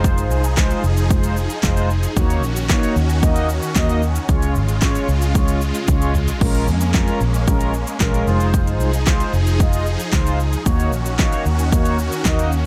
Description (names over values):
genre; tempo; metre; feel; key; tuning
dance-pop; 113 BPM; 4/4; straight; unclear; A4 = 441 Hz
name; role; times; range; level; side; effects
mellow synth brass; accompaniment; 0.0-12.5 s; Ab3 to Eb5; -26 LUFS; equal; chorus, sidechain pumping
supersaw chords; sustained chords; 0.0-12.7 s; Db3 to Ab4; -29 LUFS; equal; phaser, sidechain pumping
vintage muted fingered electric bass; bass; 0.0-12.7 s; F1 to F2; -22 LUFS; equal; sidechain pumping
pop drum kit; drums; 0.0-12.6 s; crash cymbal, handclaps, hi-hat, kick drum, shaker, snare drum, toms; -21 LUFS; equal; overdrive
room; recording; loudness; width
digital ambience; none; -18 LUFS; mono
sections
0.0-12.7 A section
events
drum fill 5.9-6.4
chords
0.0 Fm7; 2.2 Ebm7; 4.3 Db; 6.4 Bbm7; 8.3 Fm7; 10.7 Ebm7